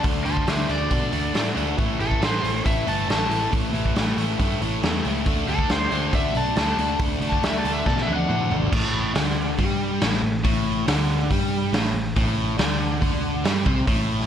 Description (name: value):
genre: blues rock power trio and southern rock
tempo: 139 BPM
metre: 4/4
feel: straight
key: unclear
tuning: A4 = 440 Hz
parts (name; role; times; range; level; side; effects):
- overdriven slide guitar; melody; 0.0-8.6 s; A4 to A5; -27 LUFS; left 1 dB; plate reverb
- overdriven electric guitar; riff; 0.0-14.3 s; A2 to D4; -24 LUFS; left 1 dB; none
- vintage muted picked electric bass; bass; 0.0-14.3 s; G1 to B2; -28 LUFS; equal; none
- raw garage drum kit; drums; 0.0-14.3 s; crash cymbal, hi-hat, kick drum, snare drum, toms; -24 LUFS; equal; none
room: light reverb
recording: none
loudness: -20 LUFS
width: side -9 dB against mid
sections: 0.0-8.7 A section; 8.7-14.3 B section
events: drum fill 7.9-8.7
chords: 0.0 D5; 1.8 A5; 5.3 D5; 8.7 Asus4